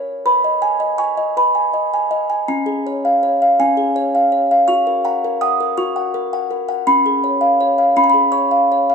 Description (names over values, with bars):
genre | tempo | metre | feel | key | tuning
classical, lullaby for music box | 54 BPM (dotted quarters) | 6/8 | straight | unclear | A4 = 440 Hz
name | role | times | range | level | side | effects
music box | solo | 0.0-8.9 s | C#4 to D#6 | -14 LUFS | equal | none
room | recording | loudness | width
light reverb | close, detailed microphones | -14 LUFS | side -6 dB against mid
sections
0.2-8.9 A section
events
none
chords
0.2 G#m/B; 2.5 C#; 4.7 F#; 6.9 C#7